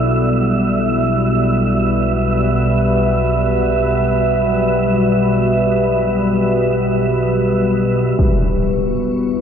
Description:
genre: dark ambient drone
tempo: free time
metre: none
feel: none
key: unclear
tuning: A4 = 441 Hz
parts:
  - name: deep dark ambient pad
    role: sustained chords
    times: 0.0-9.4 s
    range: G3 to E5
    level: -16 LUFS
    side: left 1 dB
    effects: chorus, built-in reverb
  - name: organ-like drone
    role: drone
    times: 0.0-9.4 s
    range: B1 to B2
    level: -19 LUFS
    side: equal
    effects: ensemble chorus, built-in reverb
  - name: wind-like tuned noise texture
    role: texture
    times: 0.0-9.4 s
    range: E5 to C#6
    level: -22 LUFS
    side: right 6 dB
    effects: built-in reverb
  - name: impact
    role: percussion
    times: 8.2-8.4 s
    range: none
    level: -18 LUFS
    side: equal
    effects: low-pass filter on sfx
room: wet cathedral reverb, RT60 5.2 s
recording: none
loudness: -14 LUFS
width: side -8 dB against mid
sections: 0.0-8.2 A section; 8.2-9.4 B section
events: none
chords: 0.0 G; 8.2 B5

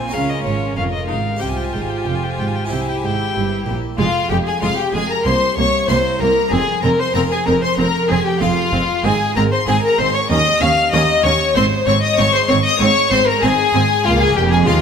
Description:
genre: classical, baroque-style concerto movement with solo episodes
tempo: 95 BPM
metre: 4/4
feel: straight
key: F minor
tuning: A4 = 440 Hz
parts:
  - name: clear chamber violin section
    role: melody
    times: 0.0-14.8 s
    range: Bb4 to F6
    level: -22 LUFS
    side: left 5 dB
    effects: none
  - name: warm violin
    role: melody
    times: 0.0-14.8 s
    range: F4 to Ab5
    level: -20 LUFS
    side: left 2 dB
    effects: none
  - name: warm chamber violin section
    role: second line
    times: 0.0-14.8 s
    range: F4 to F5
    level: -21 LUFS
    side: left 3 dB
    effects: none
  - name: harpsichord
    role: accompaniment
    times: 0.0-14.8 s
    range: C2 to C5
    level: -26 LUFS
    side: right 1 dB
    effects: none
  - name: rich studio viola section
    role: accompaniment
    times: 0.0-14.8 s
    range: Ab3 to F4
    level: -24 LUFS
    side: right 1 dB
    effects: none
  - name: warm chamber double bass section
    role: bass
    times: 0.0-14.8 s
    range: F1 to Eb2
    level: -23 LUFS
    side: right 4 dB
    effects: none
  - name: warm studio cello section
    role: bass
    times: 0.0-14.8 s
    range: C2 to Db3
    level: -23 LUFS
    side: right 4 dB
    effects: none
room: moderate concert hall reverb, RT60 2.4 s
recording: none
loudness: -14 LUFS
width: side -7 dB against mid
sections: 0.0-4.0 A section; 4.0-14.8 B section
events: none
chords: 0.1 Bbm; 1.4 Csus4; 2.7 C; 4.0 Fm; 5.3 C7; 6.5 Fm; 9.0 Ab; 10.3 Eb7; 11.6 Ab; 14.0 Db

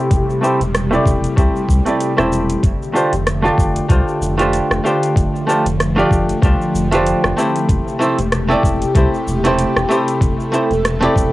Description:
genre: sunset chillout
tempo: 95 BPM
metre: 4/4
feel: swing 56% on 16ths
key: unclear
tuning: A4 = 442 Hz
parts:
  - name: archtop guitar, miked and amplified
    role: accompaniment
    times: 0.0-11.3 s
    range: A3 to D5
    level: -17 LUFS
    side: equal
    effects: auto-pan, low-pass filter, cassette tape, analog delay
  - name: airy breathy pad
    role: sustained chords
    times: 0.0-11.3 s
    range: C3 to A4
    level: -21 LUFS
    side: equal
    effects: chorus, cassette tape
  - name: warm sub bass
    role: bass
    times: 0.1-11.3 s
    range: E1 to C2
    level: -19 LUFS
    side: equal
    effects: none
  - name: electronic kick drum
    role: drums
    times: 0.1-11.3 s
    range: none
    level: -17 LUFS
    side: equal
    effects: overdrive, small room ambience, cassette tape
  - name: smooth R&B drum kit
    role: drums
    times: 0.1-11.3 s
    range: cabasa, hi-hat, rim click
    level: -22 LUFS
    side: equal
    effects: small room ambience, cassette tape
room: moderate studio reverb, RT60 0.6 s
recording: home recording on cassette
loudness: -13 LUFS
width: side -17 dB against mid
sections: 0.0-11.3 A section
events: none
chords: 0.0 Am7/E; 2.6 F69; 7.7 Am7/E

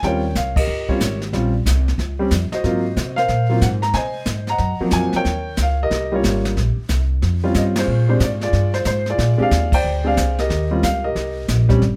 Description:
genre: jazz piano trio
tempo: 183 BPM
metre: 4/4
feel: swing 64% on 8ths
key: Eb mixolydian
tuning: A4 = 439 Hz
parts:
  - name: warm grand piano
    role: melody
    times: 0.0-11.8 s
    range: F3 to Bb5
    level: -22 LUFS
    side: equal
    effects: none
  - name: upright bass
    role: bass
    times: 0.0-12.0 s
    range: G1 to C3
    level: -22 LUFS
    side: equal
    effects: none
  - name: jazz brush drum kit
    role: drums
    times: 0.0-12.0 s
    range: brushed snare drum, crash cymbal, hi-hat, kick drum, ride cymbal, snare drum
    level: -26 LUFS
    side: equal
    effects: none
room: light reverb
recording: close, detailed microphones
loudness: -19 LUFS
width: mono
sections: 0.0-12.0 A section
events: band accent 0.5, 7.7, 9.7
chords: 0.0 Eb13; 2.6 Ab13; 5.3 Eb13; 7.9 Bb13; 10.5 Eb13

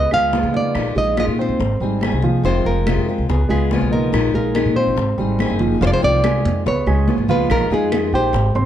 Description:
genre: latin, Cuban son and guajira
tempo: 142 BPM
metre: 4/4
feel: straight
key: unclear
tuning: A4 = 440 Hz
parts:
  - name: nylon-string guitar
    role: melody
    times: 0.0-8.5 s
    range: Ab4 to F5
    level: -21 LUFS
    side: equal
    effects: plate reverb
  - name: dark baby grand piano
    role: arpeggios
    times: 0.0-8.7 s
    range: F3 to C6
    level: -23 LUFS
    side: right 5 dB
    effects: none
  - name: upright bass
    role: bass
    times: 0.0-8.7 s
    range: F1 to Db3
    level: -20 LUFS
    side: equal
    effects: none
  - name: fingerpicked old ladder-braced acoustic guitar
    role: accompaniment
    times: 0.1-8.4 s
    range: C3 to Ab4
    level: -23 LUFS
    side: left 7 dB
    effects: none
  - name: claves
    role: percussion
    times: 0.1-8.1 s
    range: none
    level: -33 LUFS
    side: right 2 dB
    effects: none
  - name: congas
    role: percussion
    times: 0.1-8.7 s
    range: none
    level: -25 LUFS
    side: right 2 dB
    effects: none
  - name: bongos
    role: percussion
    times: 0.3-8.7 s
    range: none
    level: -31 LUFS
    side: left 7 dB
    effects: none
room: light reverb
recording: dark, warm production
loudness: -15 LUFS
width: side -10 dB against mid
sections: 0.0-5.8 A section; 5.8-8.7 B section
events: none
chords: 0.0 Db7; 0.8 Bb7sus4; 1.6 Abmaj7; 2.4 Fm7; 3.3 Db7; 4.1 Bb7sus4; 5.0 Abmaj7; 5.8 Fm7; 6.7 Db7; 7.5 Bb7sus4

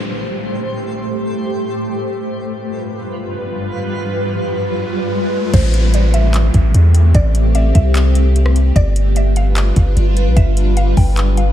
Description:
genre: hip hop, atmospheric cloud-rap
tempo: 149 BPM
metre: 4/4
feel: half-time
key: A minor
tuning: A4 = 441 Hz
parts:
  - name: granular cloud pad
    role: sustained chords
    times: 0.0-11.5 s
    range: G2 to C5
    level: -20 LUFS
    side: equal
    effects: built-in reverb, lush chorus, sidechain pumping, low-pass filter
  - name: downlifter and riser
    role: sound effects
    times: 0.0-8.8 s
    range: none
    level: -28 LUFS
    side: right 1 dB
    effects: none
  - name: twinkling granular texture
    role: texture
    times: 0.0-5.5 s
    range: G3 to C5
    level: -30 LUFS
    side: left 1 dB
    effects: built-in reverb, lush chorus
  - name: mallet-like synth pluck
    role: melody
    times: 5.5-11.5 s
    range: C5 to G5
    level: -26 LUFS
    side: equal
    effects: chorus, phaser, diffuse ambient delay
  - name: long sustained 808-style bass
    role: bass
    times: 5.5-11.5 s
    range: G1 to E2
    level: -12 LUFS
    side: equal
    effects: none
  - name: smooth R&B drum kit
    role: drums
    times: 5.5-11.5 s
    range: crash cymbal, handclaps, hi-hat, kick drum, rim click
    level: -16 LUFS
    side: equal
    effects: none
room: digital ambience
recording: none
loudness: -13 LUFS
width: side -12 dB against mid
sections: 0.0-5.5 A section; 5.5-11.5 B section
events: filter sweep on ambient pad 0.0-5.5; riser 3.3-5.5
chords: 0.0 Am7; 2.3 G7; 5.5 Am7; 8.8 G7

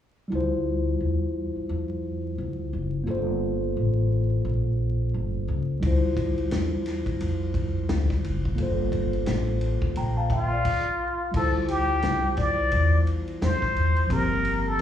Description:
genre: hip hop, jazz-hop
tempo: 87 BPM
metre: 4/4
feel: swing 59% on 16ths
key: D minor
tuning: A4 = 438 Hz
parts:
  - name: mellow tine electric piano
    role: accompaniment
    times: 0.3-14.8 s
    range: F3 to Bb5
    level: -29 LUFS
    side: equal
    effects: medium stereo tremolo, slapback echo
  - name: upright bass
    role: bass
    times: 0.3-14.8 s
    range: F#1 to F2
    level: -26 LUFS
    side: equal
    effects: none
  - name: vintage drum kit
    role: drums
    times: 5.8-14.8 s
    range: crash cymbal, hi-hat, kick drum, ride cymbal, snare drum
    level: -30 LUFS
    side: left 1 dB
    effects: none
  - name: trumpet with plunger mute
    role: melody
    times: 10.3-14.8 s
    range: F4 to D5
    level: -25 LUFS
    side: left 2 dB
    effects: slapback echo
room: little or no reverb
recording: live gig heard through the venue's PA, club reverb, vinyl crackle, studio ambience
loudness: -23 LUFS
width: side -10 dB against mid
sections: 0.3-11.3 A section; 11.3-14.8 B section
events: none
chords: 0.3 Dm11; 3.1 Gm11; 5.8 Dm11; 8.6 Gm11; 11.3 Dm11; 14.1 Gm11

